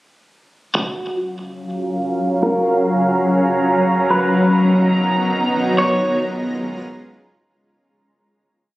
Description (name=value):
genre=hip hop, atmospheric cloud-rap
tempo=free time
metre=none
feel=none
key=F# major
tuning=A4 = 440 Hz
part: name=electric guitar at the edge of break-up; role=melody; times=0.8-6.2 s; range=F#4 to C#5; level=-20 LUFS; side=equal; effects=low-pass filter, ping-pong delay
part: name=granular cloud pad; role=sustained chords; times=1.4-7.5 s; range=F#3 to A#5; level=-16 LUFS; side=equal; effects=built-in reverb, low-pass filter
room=moderate lush hall reverb, RT60 2.7 s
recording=recorded on a phone in the room, studio reverb, compression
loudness=-15 LUFS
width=side -17 dB against mid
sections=0.8-7.5 breakdown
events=filter sweep 0.8-7.5; fade-out 5.8-7.5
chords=0.8 F#maj7; 4.1 Bmaj7; 5.8 A#m7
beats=free time